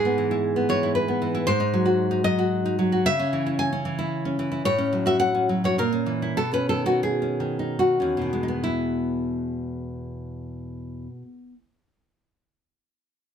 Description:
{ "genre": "romantic piece for solo classical guitar", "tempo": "67-118 BPM", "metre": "3/4", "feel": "rubato", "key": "E major", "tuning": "A4 = 440 Hz", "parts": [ { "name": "nylon-string guitar", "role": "solo", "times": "0.0-11.7 s", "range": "E2 to G#5", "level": "-22 LUFS", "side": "equal", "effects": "none" } ], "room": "light reverb", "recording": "none", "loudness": "-21 LUFS", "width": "side -8 dB against mid", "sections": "0.0-8.6 A section; 8.6-13.3 B section", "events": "slowing down 3.8-8.6", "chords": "0.0 E/G#; 1.5 G#7; 3.1 C#m; 4.6 F#m/A; 5.8 A#dim; 6.4 Badd9; 8.6 E", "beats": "0.45 0.96 | 1.49 2.00 2.52 | 3.06 3.59 4.11 | 4.64 5.20 5.78 | 6.38 7.04 7.79 | 8.63 9.41 10.20 | 11.00" }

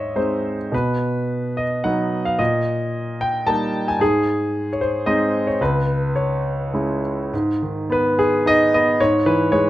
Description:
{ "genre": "classical, lyrical solo piano", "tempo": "99-115 BPM", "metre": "3/4", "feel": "rubato", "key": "unclear", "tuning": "A4 = 440 Hz", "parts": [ { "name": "bright concert grand piano", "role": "solo", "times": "0.0-9.7 s", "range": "C#2 to A5", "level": "-18 LUFS", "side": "equal", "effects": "none" } ], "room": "light reverb", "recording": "close, detailed microphones", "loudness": "-18 LUFS", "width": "side -15 dB against mid", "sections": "0.0-7.3 A section; 7.3-9.7 B section", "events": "none", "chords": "0.0 G#; 0.7 B; 2.4 D#/A#; 4.0 G#; 5.6 C#m; 7.3 G#m; 9.0 Amaj9/G# (rootless)", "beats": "0.16 | 0.73 1.29 1.85 | 2.40 2.94 3.48 | 4.01 4.54 5.07 | 5.61 6.15 6.74 | 7.33 7.89 8.45 | 9.00 9.53" }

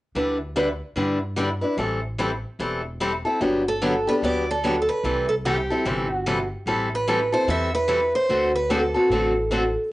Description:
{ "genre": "acoustic string swing (jazz manouche)", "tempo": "148 BPM", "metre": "4/4", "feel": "swing 62% on 8ths", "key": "G major", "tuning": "A4 = 438 Hz", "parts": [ { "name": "picked steel-string acoustic guitar", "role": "accompaniment", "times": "0.1-9.6 s", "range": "C3 to B4", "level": "-23 LUFS", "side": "left 1 dB", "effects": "none" }, { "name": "upright bass", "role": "bass", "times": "0.1-9.8 s", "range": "E1 to G2", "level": "-31 LUFS", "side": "equal", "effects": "none" }, { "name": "picked steel-string acoustic guitar", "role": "melody", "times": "3.7-9.7 s", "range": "G4 to E5", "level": "-23 LUFS", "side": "right 1 dB", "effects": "cassette tape" } ], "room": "moderate studio reverb, RT60 0.7 s", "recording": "home recording on cassette, nothing above 10.5 kHz", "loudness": "-21 LUFS", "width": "side -18 dB against mid", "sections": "0.2-3.4 A section; 3.4-9.9 B section", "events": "none", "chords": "0.2 G6/D; 1.8 Am7; 3.4 Gmaj7; 5.0 C6; 6.7 Am9; 8.3 D7", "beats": "| 0.15 0.56 0.97 1.37 | 1.78 2.19 2.59 3.00 | 3.41 3.81 4.22 4.63 | 5.03 5.44 5.85 6.25 | 6.66 7.07 7.47 7.88 | 8.29 8.69 9.10 9.51" }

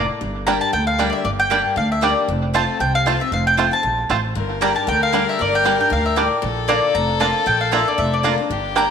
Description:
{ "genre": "bluegrass", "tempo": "232 BPM", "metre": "4/4", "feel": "swing 54% on 8ths", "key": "G dorian", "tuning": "A4 = 440 Hz", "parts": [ { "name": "mandolin", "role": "melody", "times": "0.0-8.9 s", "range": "D5 to Bb5", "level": "-20 LUFS", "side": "left 1 dB", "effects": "none" }, { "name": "picked steel-string acoustic guitar", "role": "accompaniment", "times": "0.0-8.9 s", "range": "E2 to G4", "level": "-27 LUFS", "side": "left 9 dB", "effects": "none" }, { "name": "mandolin", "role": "stabs", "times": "0.0-8.9 s", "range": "Bb3 to Bb5", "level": "-24 LUFS", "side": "right 8 dB", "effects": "none" }, { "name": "upright bass", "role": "bass", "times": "0.0-8.9 s", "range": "F1 to D2", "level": "-24 LUFS", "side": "right 1 dB", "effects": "none" }, { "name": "bluegrass banjo", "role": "melody", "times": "0.5-8.8 s", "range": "G3 to F4", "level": "-27 LUFS", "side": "right 4 dB", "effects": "tape echo" }, { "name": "clear fiddle", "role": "second line", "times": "4.4-8.9 s", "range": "G4 to Bb4", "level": "-24 LUFS", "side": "left 7 dB", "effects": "none" } ], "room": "wet echo chamber reverb, RT60 1.7 s, studio ambience", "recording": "1960s-style stereo with parts hard left and right", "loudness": "-16 LUFS", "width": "side -7 dB against mid", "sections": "0.0-8.9 A section", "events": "none", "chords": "0.2 Gm; 2.3 F; 4.4 Gm; 6.4 Bb", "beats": "| 0.21 0.47 0.73 0.99 | 1.25 1.51 1.77 2.02 | 2.28 2.54 2.80 3.06 | 3.32 3.58 3.84 4.10 | 4.36 4.62 4.87 5.13 | 5.39 5.65 5.91 6.17 | 6.43 6.69 6.94 7.20 | 7.46 7.72 7.98 8.24 | 8.50 8.76" }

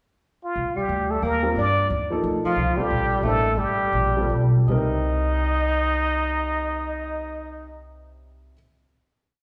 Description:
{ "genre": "jazz", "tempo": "154-180 BPM", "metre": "3/4", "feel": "swing 62% on 8ths", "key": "C dorian", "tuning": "A4 = 439 Hz", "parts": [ { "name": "trumpet with plunger mute", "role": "melody", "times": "0.4-7.8 s", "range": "Eb4 to D5", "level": "-28 LUFS", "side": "equal", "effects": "none" }, { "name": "upright bass", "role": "bass", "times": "0.6-8.5 s", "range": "G1 to G2", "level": "-27 LUFS", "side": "equal", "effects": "none" }, { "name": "mellow alto saxophone", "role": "second line", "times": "0.8-7.8 s", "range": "F3 to Eb5", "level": "-30 LUFS", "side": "equal", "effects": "none" }, { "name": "warm baby grand piano", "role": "accompaniment", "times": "1.4-8.5 s", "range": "C3 to C5", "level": "-31 LUFS", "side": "equal", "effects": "none" } ], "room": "wet recital hall reverb, RT60 1.3 s", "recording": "recorded in a church or concert hall", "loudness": "-23 LUFS", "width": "mono", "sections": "0.0-0.6 pickup bar; 0.6-4.7 A section; 4.7-7.0 final chord", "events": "slowing down 2.6-4.7", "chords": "0.0 N.C.; 0.6 Cm9; 2.6 Ebadd9 (rootless); 4.7 Cm7", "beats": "0.23 | 0.56 0.89 1.23 | 1.56 1.89 2.23 | 2.56 2.90 3.23 | 3.58 3.94 4.30 | 4.69 5.08 5.47 | 5.86 6.25 6.64" }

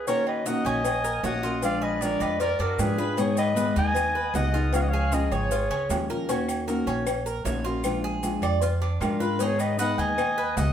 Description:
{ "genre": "latin, Cuban son and guajira", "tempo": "154 BPM", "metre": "4/4", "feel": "straight", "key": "Eb minor", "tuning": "A4 = 439 Hz", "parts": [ { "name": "growling clarinet", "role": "melody", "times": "0.0-6.1, 9.0-10.7 s", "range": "Bb4 to Ab5", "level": "-28 LUFS", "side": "right 1 dB", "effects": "none" }, { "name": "clear trumpet", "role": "second line", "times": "0.0-6.1, 9.0-10.7 s", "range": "F4 to Eb5", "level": "-34 LUFS", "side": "left 2 dB", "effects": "none" }, { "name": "nylon-string guitar", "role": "accompaniment", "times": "0.1-10.7 s", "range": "Db3 to Ab4", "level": "-29 LUFS", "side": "left 2 dB", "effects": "none" }, { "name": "Cuban tres", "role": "arpeggios", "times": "0.1-10.7 s", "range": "Db4 to Eb5", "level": "-32 LUFS", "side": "right 3 dB", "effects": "none" }, { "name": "agogo bells and timbales", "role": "percussion", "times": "0.1-10.7 s", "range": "none", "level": "-35 LUFS", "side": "right 6 dB", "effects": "none" }, { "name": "cowbell", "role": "percussion", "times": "0.1-10.7 s", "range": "none", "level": "-34 LUFS", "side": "left 8 dB", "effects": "none" }, { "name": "maracas", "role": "percussion", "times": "0.1-10.7 s", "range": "none", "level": "-40 LUFS", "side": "left 4 dB", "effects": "none" }, { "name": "upright bass", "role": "bass", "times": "0.7-10.7 s", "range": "Ab1 to Ab2", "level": "-29 LUFS", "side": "equal", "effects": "none" }, { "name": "claves", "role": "percussion", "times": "6.5-10.4 s", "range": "none", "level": "-43 LUFS", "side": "left 1 dB", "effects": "none" } ], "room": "wet studio reverb, RT60 0.9 s", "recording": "band playing live in one room", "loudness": "-23 LUFS", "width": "side -9 dB against mid", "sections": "0.1-10.7 A section", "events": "none", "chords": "0.1 Ebm7; 1.6 Bb7; 3.2 Abm; 4.7 Db; 6.3 Ebm7; 7.8 Bb7; 9.4 Abm", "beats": "| 0.07 0.46 0.85 1.24 | 1.63 2.02 2.40 2.79 | 3.18 3.57 3.96 4.35 | 4.74 5.12 5.51 5.90 | 6.29 6.68 7.07 7.46 | 7.85 8.23 8.62 9.01 | 9.40 9.79 10.18 10.57" }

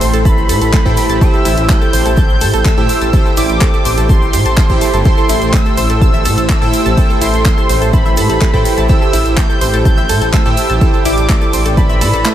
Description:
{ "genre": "progressive house", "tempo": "125 BPM", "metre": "4/4", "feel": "straight", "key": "unclear", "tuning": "A4 = 440 Hz", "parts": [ { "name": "wide unison lead", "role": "melody", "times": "0.0-12.3 s", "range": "B5 to G6", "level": "-19 LUFS", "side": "equal", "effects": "sidechain pumping, tape echo" }, { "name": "warm analog pad", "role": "sustained chords", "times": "0.0-12.3 s", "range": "A3 to A5", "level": "-21 LUFS", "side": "right 1 dB", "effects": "chorus, sidechain pumping" }, { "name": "analog pluck", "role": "arpeggios", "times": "0.0-12.3 s", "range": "A3 to A5", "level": "-20 LUFS", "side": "equal", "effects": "chorus, sidechain pumping, tape echo" }, { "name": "supersaw stab", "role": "stabs", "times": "0.0-12.0 s", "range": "E4 to G5", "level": "-20 LUFS", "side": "right 3 dB", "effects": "sidechain pumping, tape echo" }, { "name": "dark detuned saw bass", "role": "bass", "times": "0.0-12.2 s", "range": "G1 to A2", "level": "-17 LUFS", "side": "equal", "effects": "tube saturation, sidechain pumping" }, { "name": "deep house drum kit", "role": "drums", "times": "0.0-12.3 s", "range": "handclaps, hi-hat, ride cymbal", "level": "-22 LUFS", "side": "equal", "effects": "sidechain pumping on hats, small room ambience, sidechain pumping on cymbals" }, { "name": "egg shaker", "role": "percussion", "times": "0.0-12.3 s", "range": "none", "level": "-30 LUFS", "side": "right 2 dB", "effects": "none" }, { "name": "electronic kick drum", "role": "drums", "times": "0.3-11.9 s", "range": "none", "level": "-12 LUFS", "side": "equal", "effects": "small room ambience" } ], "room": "light reverb, digital ambience", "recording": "none", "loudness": "-9 LUFS", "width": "side -11 dB against mid", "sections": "0.0-12.3 A section", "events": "none", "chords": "0.0 Am7; 1.2 C/A; 5.1 Am7; 8.9 C/A", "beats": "0.25 0.73 | 1.21 1.69 2.17 2.65 | 3.13 3.61 4.09 4.57 | 5.05 5.53 6.01 6.49 | 6.97 7.45 7.93 8.41 | 8.89 9.37 9.85 10.33 | 10.81 11.29 11.77 12.25" }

